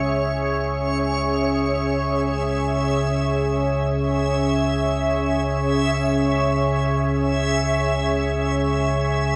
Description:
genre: dark ambient drone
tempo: free time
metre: none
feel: none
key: C# minor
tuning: A4 = 440 Hz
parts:
  - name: deep dark ambient pad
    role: sustained chords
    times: 0.0-9.4 s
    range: C#4 to E5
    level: -24 LUFS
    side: equal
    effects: chorus, built-in reverb, shimmer reverb
  - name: deep rumbling drone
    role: drone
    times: 0.0-9.4 s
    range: C#2 to C#3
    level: -26 LUFS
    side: equal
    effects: built-in reverb
  - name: backwards swelling texture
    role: texture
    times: 0.0-9.4 s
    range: C#5 to E5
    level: -29 LUFS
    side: equal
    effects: built-in reverb, lush chorus, shimmer reverb
room: wet lush hall reverb, RT60 2.9 s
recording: dreamy mix soaked in reverb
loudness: -22 LUFS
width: mono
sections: 0.0-9.4 A section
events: none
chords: 0.0 C#m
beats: free time

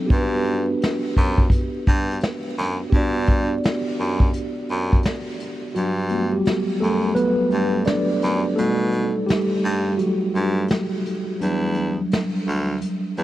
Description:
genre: lo-fi hip hop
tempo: 85 BPM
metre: 4/4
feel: swing 66% on 16ths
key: G major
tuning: A4 = 438 Hz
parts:
  - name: mellow tine electric piano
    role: accompaniment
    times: 0.0-13.2 s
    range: F#3 to D5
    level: -22 LUFS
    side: equal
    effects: medium stereo tremolo, cassette tape, low-pass filter
  - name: clear baritone saxophone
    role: bass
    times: 0.1-13.2 s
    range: D2 to B2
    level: -24 LUFS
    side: equal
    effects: none
  - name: vintage brush drum kit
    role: drums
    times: 0.1-13.2 s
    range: hi-hat, kick drum, snare drum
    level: -22 LUFS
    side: equal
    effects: vintage 12-bit sampler grit
room: moderate huge ambient reverb, RT60 5.1 s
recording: dreamy mix soaked in reverb, vinyl crackle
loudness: -19 LUFS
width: side -14 dB against mid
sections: 0.0-5.8 A section; 5.8-13.2 B section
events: kick muted 5.8-13.2; tine electric piano solo 5.8-13.2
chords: 0.1 Gmaj7; 8.6 B7b13; 11.4 Em9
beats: | 0.11 0.81 1.52 2.23 | 2.93 3.64 4.34 5.05 | 5.75 6.46 7.17 7.87 | 8.58 9.29 9.99 10.70 | 11.40 12.11 12.81

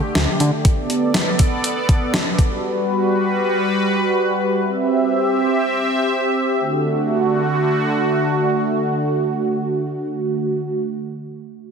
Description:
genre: synth-pop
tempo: free time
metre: none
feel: none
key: D mixolydian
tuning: A4 = 443 Hz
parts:
  - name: sweeping resonant pad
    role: sustained chords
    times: 0.0-10.8 s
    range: D3 to E5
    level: -18 LUFS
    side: right 1 dB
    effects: chorus
  - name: fat analog bass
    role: bass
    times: 0.2-0.5 s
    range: D2 to D3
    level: -18 LUFS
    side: equal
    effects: none
  - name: clean 12-bit digital drum machine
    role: drums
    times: 0.2-2.5 s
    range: hi-hat, kick drum, snare drum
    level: -18 LUFS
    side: equal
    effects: none
room: wet lush hall reverb, RT60 2.7 s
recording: dense, heavily limited modern master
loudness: -17 LUFS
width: side -6 dB against mid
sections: 0.0-6.6 A section; 6.6-10.6 B section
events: none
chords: 0.0 Dsus4; 0.7 Bm7; 2.4 Gmaj7; 4.6 C; 6.6 D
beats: free time

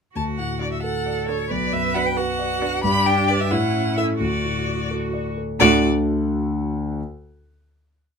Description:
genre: quick classical-period movement for piano quartet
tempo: 88 BPM (dotted quarters)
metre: 6/8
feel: straight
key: D major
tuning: A4 = 440 Hz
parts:
  - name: rich cello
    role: second line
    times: 0.1-5.9 s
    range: A2 to B4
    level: -26 LUFS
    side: right 9 dB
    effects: none
  - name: clear violin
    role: melody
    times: 0.2-5.9 s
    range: C#5 to B5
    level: -23 LUFS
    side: left 5 dB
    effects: none
  - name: dark concert grand piano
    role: accompaniment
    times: 0.2-7.0 s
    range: B1 to F#5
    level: -22 LUFS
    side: left 1 dB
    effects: none
  - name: rich viola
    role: accompaniment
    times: 0.6-5.9 s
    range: C#4 to F#4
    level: -29 LUFS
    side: right 4 dB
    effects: none
room: light reverb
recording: close, detailed microphones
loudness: -19 LUFS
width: side -6 dB against mid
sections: 0.2-5.6 A section; 5.6-7.0 final chord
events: none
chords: 0.2 D; 1.5 Bm; 2.8 G; 3.5 A; 4.2 D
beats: | 0.16 0.84 | 1.51 2.17 | 2.84 3.51 | 4.20 4.90 | 5.60 6.29

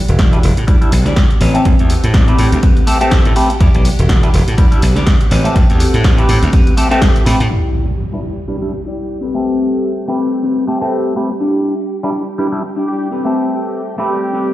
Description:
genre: filtered disco house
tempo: 123 BPM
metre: 4/4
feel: swing 57% on 16ths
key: A dorian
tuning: A4 = 437 Hz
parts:
  - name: string machine, full ensemble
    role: sustained chords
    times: 0.0-14.5 s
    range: G4 to G5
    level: -25 LUFS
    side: right 2 dB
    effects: ensemble chorus, sidechain pumping, low-pass filter
  - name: glassy slap bass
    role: bass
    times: 0.1-7.5 s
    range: E1 to A2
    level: -14 LUFS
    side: equal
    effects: sidechain pumping, low-pass filter
  - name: punchy analog drum machine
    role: drums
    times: 0.1-7.5 s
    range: hi-hat, snare drum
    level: -22 LUFS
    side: equal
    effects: sidechain pumping on hats, low-pass filter on hats, low-pass filter on snare, low-pass filter on room
  - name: tambourine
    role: percussion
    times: 0.1-7.5 s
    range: none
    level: -36 LUFS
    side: left 3 dB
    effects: none
  - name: clean electric guitar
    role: riff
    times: 0.2-14.5 s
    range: C4 to A5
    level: -21 LUFS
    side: left 4 dB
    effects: sidechain pumping, low-pass filter
  - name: electronic kick drum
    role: drums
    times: 0.2-7.1 s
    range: none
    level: -12 LUFS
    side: equal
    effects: none
  - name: mellow clav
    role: accompaniment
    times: 0.3-14.5 s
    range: G3 to E5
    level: -18 LUFS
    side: equal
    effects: phaser, sidechain pumping, low-pass filter
  - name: impact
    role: sound effects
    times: 7.5-9.5 s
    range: none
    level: -21 LUFS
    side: equal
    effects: none
  - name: brilliant horn section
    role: melody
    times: 12.9-14.5 s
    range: G3 to G4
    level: -23 LUFS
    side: right 1 dB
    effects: sidechain pumping, low-pass filter
room: light reverb, digital ambience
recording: played on a big sound system in a bare room, stone room reverb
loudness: -11 LUFS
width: side -15 dB against mid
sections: 0.0-7.5 A section; 7.5-14.5 B section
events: filter sweep 0.0-7.5, 7.5-14.5; clean electric guitar fill 2.9-3.6; impact 7.5-9.5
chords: 0.0 Em7; 1.4 Am9; 3.6 Em7; 5.3 Am9; 7.5 Em7; 9.2 Am9; 11.4 Em7; 13.1 Am9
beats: 0.19 0.68 1.17 | 1.66 2.14 2.63 3.12 | 3.61 4.09 4.58 5.07 | 5.56 6.05 6.53 7.02 | 7.51 8.00 8.48 8.97 | 9.46 9.95 10.44 10.92 | 11.41 11.90 12.39 12.88 | 13.36 13.85 14.34

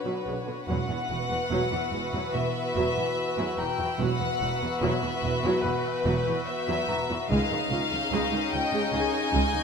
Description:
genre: cinematic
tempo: 73 BPM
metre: 4/4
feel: straight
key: unclear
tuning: A4 = 438 Hz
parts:
  - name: warm studio violin section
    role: melody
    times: 0.0-9.6 s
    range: B4 to G#5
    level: -31 LUFS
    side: left 4 dB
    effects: none
  - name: warm symphonic violin section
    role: second line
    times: 0.0-9.6 s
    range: D#4 to D#5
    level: -32 LUFS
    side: left 3 dB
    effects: none
  - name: dark symphonic viola section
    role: accompaniment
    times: 0.0-9.6 s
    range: C#3 to D4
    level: -32 LUFS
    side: right 1 dB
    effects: none
  - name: flickering grainy texture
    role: sustained chords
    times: 0.0-9.6 s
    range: D4 to F#5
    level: -40 LUFS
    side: equal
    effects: none
  - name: mellow French horn section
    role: sustained chords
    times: 0.0-9.2 s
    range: D3 to B4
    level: -35 LUFS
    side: left 2 dB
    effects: none
  - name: rich symphonic cello section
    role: bass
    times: 0.0-9.6 s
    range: C#2 to B2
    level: -34 LUFS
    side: right 4 dB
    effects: none
  - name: bright baby grand piano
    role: texture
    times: 0.0-9.6 s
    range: B4 to A#5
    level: -41 LUFS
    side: left 4 dB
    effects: none
  - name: warm symphonic double bass section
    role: bass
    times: 0.3-9.4 s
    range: E1 to C#2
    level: -33 LUFS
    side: right 5 dB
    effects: none
  - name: warm symphonic violin section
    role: texture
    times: 0.7-9.6 s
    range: B5 to G6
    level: -41 LUFS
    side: left 4 dB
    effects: none
room: light reverb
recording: close, detailed microphones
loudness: -25 LUFS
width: side -6 dB against mid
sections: 0.0-9.6 A section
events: none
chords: 0.0 Bmadd9; 0.7 Esus2; 7.3 C#add9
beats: | 0.69 1.52 2.35 3.18 | 4.00 4.82 5.64 6.48 | 7.31 8.13 8.94

